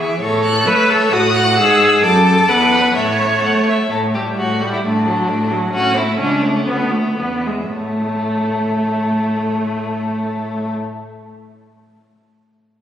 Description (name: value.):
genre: quick classical-period movement for string quartet.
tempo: 106-134 BPM.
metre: 2/4.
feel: rubato.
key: A major.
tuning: A4 = 440 Hz.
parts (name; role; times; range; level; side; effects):
rich violin; melody; 0.0-10.7 s; B4 to F#6; -23 LUFS; left 5 dB; none.
rich violin; second line; 0.0-10.7 s; A3 to A5; -20 LUFS; left 1 dB; none.
warm cello; bass; 0.0-10.7 s; C#2 to A3; -21 LUFS; right 1 dB; none.
clear viola; accompaniment; 0.2-10.7 s; F#3 to C#5; -17 LUFS; equal; none.
room: wet concert hall reverb, RT60 2.5 s.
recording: recorded on a phone in the room, studio ambience.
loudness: -14 LUFS.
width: side -10 dB against mid.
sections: 0.0-3.9 A section; 3.9-7.7 B section; 7.7-10.0 C section.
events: slowing down 5.3-7.7.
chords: 0.2 A; 1.1 D#dim/A; 1.6 E/G#; 2.0 D/F#; 2.5 E5; 3.0 A; 3.9 A7; 4.8 D/A; 5.7 A; 6.2 A/C#; 6.7 Bm7/D; 7.2 E7; 7.7 A.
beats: | 0.21 0.67 | 1.13 1.58 | 2.04 2.50 | 2.96 3.44 | 3.91 4.38 | 4.83 5.28 | 5.73 6.19 | 6.67 7.18 | 7.74 8.30 | 8.86 9.42.